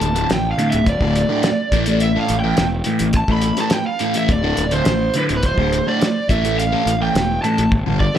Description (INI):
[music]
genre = psychedelic rock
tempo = 105 BPM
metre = 4/4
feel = straight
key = D dorian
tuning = A4 = 442 Hz
[part]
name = overdriven slide guitar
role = melody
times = 0.0-8.2 s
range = B4 to B5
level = -22 LUFS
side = right 2 dB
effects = tape echo
[part]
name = fuzz guitar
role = riff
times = 0.0-8.2 s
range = D2 to A3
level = -20 LUFS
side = left 1 dB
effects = distortion, phaser
[part]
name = fuzz fingered electric bass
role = bass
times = 0.0-8.1 s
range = D1 to A1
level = -22 LUFS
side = equal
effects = overdrive
[part]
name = cloth-damped thuddy drum kit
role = drums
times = 0.0-8.2 s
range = hi-hat, kick drum, snare drum, toms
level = -21 LUFS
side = equal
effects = none
[sound]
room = light reverb, small room ambience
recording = none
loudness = -15 LUFS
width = side -10 dB against mid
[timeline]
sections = 0.0-8.2 A section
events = electric slide guitar solo 0.0-8.2; drum fill 7.7-8.2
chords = 0.0 D5; 1.7 A5; 4.3 D5; 6.3 A5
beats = 0.30 0.88 1.45 | 2.02 2.59 3.16 3.73 | 4.30 4.87 5.44 6.01 | 6.58 7.15 7.72